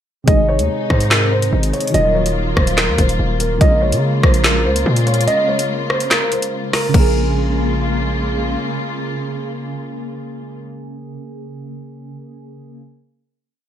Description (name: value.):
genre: hip hop, drill.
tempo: 144 BPM.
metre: 4/4.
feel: half-time.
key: Bb minor.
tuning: A4 = 439 Hz.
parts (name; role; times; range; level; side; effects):
soft electric-piano-like synth keys; accompaniment; 0.2-12.8 s; C3 to Bb4; -24 LUFS; right 1 dB; chorus, phaser.
dark concert grand piano; melody; 0.3-8.2 s; Bb4 to Eb5; -20 LUFS; equal; ping-pong delay.
dark symphonic string section; sustained chords; 0.3-10.6 s; C3 to F4; -24 LUFS; left 3 dB; none.
distorted 808-style bass; bass; 0.3-8.6 s; Eb1 to Db3; -18 LUFS; equal; distortion.
drill drum kit; drums; 0.3-7.0 s; crash cymbal, handclaps, hi-hat, kick drum, rim click, snare drum; -16 LUFS; equal; gated reverb.
room: moderate plate reverb, RT60 1.0 s, digital ambience.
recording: bright 1980s-style digital production.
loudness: -14 LUFS.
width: side -10 dB against mid.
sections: 0.3-6.9 hook; 6.9-10.3 final chord.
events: break 5.3-6.9.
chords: 0.3 Ab; 1.9 Ebmadd9; 3.6 Bbm7.